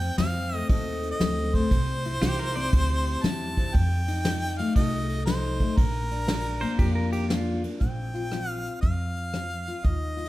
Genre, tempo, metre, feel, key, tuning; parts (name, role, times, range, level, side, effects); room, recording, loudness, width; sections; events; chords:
honky-tonk and classic country; 118 BPM; 4/4; swing 66% on 8ths; Bb major; A4 = 440 Hz
clear harmonica; melody; 0.0-10.3 s; Bb4 to A5; -32 LUFS; equal
picked steel-string acoustic guitar; accompaniment; 0.0-10.3 s; F2 to A4; -31 LUFS; left 3 dB
upright bass; bass; 0.0-10.3 s; Bb1 to F2; -28 LUFS; equal
soft brush drum kit; drums; 0.0-10.3 s; hi-hat, kick drum, ride cymbal, rim click, snare drum; -27 LUFS; equal
pedal steel guitar; second line; 2.2-3.1, 6.6-7.6 s; F4 to D5; -35 LUFS; right 2 dB
light reverb; -24 LUFS; side -16 dB against mid
0.0-7.8 A section; 7.8-10.3 B section
0.0 F; 1.7 C; 3.7 F7; 5.8 Bb; 7.8 Bbsus2